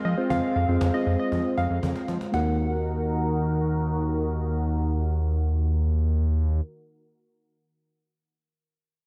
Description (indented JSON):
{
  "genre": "synth-pop",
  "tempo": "118 BPM",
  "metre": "4/4",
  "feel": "straight",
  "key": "Eb dorian",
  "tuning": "A4 = 440 Hz",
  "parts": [
    { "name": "warbly dusty pluck", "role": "second line", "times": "0.0-3.8 s", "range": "Eb5 to Gb5", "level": "-34 LUFS", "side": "equal", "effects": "chorus, analog delay" },
    { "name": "sweeping resonant pad", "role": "sustained chords", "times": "0.0-6.6 s", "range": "Eb3 to Bb4", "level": "-33 LUFS", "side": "equal", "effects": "lush chorus, low-pass filter" },
    { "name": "smooth synth bass", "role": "bass", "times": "0.0-6.6 s", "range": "Eb2 to F3", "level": "-27 LUFS", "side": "equal", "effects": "none" },
    { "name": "cajon", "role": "drums", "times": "0.1-2.5 s", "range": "none", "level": "-39 LUFS", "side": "equal", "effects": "none" },
    { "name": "muted felt-like synth keys", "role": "accompaniment", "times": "0.2-6.6 s", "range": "Bb3 to C5", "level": "-33 LUFS", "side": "equal", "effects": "chorus, low-pass filter" }
  ],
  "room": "moderate lush hall reverb, RT60 2.8 s",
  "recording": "dreamy mix soaked in reverb, cassette tape",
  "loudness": "-25 LUFS",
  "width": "mono",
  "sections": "0.0-2.3 A section; 2.3-6.4 B section",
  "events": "filter sweep 0.0-2.3; drum fill 1.3-2.3",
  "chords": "0.0 Fm; 2.3 Ebm"
}